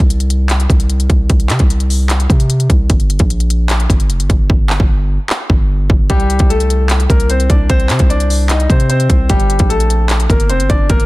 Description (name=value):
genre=hip hop, trap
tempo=150 BPM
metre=4/4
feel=half-time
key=unclear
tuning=A4 = 440 Hz
part: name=long sustained 808-style bass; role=bass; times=0.0-11.1 s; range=F1 to C3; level=-14 LUFS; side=equal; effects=none
part: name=trap drum kit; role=drums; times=0.0-11.1 s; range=handclaps, hi-hat, kick drum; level=-13 LUFS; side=equal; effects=none
part: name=clear concert grand piano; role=melody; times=6.1-11.1 s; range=G3 to Eb5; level=-17 LUFS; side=left 2 dB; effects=low-pass filter, digital delay
room=digital ambience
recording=dense, heavily limited modern master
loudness=-10 LUFS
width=side -20 dB against mid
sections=0.0-11.1 A section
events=break 0.0-6.1; hi-hats muted 4.5-6.1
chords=0.0 N.C.; 2.9 Gm; 6.1 Csus2; 9.3 Gmadd9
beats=0.10 0.50 0.90 | 1.30 1.70 2.10 2.50 | 2.90 3.30 3.70 4.10 | 4.50 4.90 5.30 5.70 | 6.10 6.50 6.90 7.30 | 7.70 8.10 8.50 8.90 | 9.30 9.70 10.10 10.50 | 10.90